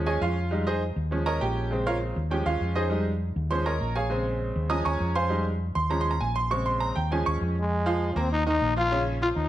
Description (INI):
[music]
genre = latin, salsa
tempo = 200 BPM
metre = 4/4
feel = straight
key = unclear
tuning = A4 = 439 Hz
[part]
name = bright upright piano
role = accompaniment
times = 0.0-9.5 s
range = Db3 to Eb6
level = -27 LUFS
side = right 2 dB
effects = none
[part]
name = hollow-body short-scale fingered electric bass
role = bass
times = 0.0-9.5 s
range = Bb1 to F2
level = -28 LUFS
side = left 1 dB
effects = none
[part]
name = growling trombone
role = melody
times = 7.6-9.5 s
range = Ab3 to F4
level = -26 LUFS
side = left 2 dB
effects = none
[sound]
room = moderate large studio reverb, RT60 1.3 s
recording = none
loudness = -24 LUFS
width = side -13 dB against mid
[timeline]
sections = 0.0-7.7 A section; 7.7-9.5 B section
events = upright piano solo 0.0-7.7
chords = 0.0 Eb7sus4; 0.5 Fm7; 1.1 Eb7sus4; 1.7 Bbm7; 2.3 Eb7sus4; 2.9 Fm7; 3.5 Bbm7; 4.7 Eb7sus4; 5.3 Fm7; 5.9 Eb7sus4; 6.5 Bbm7; 7.1 Eb7sus4; 7.7 Fm7; 8.3 Eb5; 8.9 Bbm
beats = 0.21 | 0.51 0.81 1.11 1.41 | 1.71 2.01 2.31 2.61 | 2.91 3.21 3.52 3.81 | 4.12 4.42 4.71 5.01 | 5.32 5.62 5.92 6.21 | 6.51 6.82 7.12 7.42 | 7.71 8.02 8.31 8.61 | 8.91 9.21